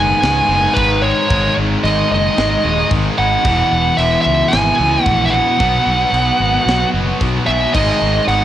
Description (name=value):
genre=heavy metal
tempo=112 BPM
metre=4/4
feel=straight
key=unclear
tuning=A4 = 439 Hz
part: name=high-gain lead guitar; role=melody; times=0.0-8.4 s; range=Cb5 to Ab5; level=-15 LUFS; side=right 1 dB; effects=distortion, cassette tape, analog delay
part: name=nasal lead guitar with a parked wah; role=second line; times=0.0-8.4 s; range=Eb3 to Cb4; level=-27 LUFS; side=right 3 dB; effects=overdrive, analog delay
part: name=distorted electric guitar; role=riff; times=0.0-8.4 s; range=E2 to B3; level=-23 LUFS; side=equal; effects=overdrive
part: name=high-gain distorted guitar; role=riff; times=0.0-8.4 s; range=E2 to B3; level=-24 LUFS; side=right 7 dB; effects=distortion
part: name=scooped high-gain guitar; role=riff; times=0.0-8.4 s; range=E2 to B3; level=-22 LUFS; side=left 7 dB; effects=distortion
part: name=fuzz fingered electric bass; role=bass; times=0.0-8.4 s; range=Eb1 to Db2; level=-20 LUFS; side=equal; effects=overdrive
part: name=tight metal drum kit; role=drums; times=0.2-8.4 s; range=china cymbal, crash cymbal, kick drum, snare drum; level=-24 LUFS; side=equal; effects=cassette tape
room=small room ambience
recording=home recording on cassette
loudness=-12 LUFS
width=side -11 dB against mid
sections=0.0-8.4 A section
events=half time 0.0-8.4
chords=0.0 Abm; 3.5 E; 5.6 B5; 7.7 Abm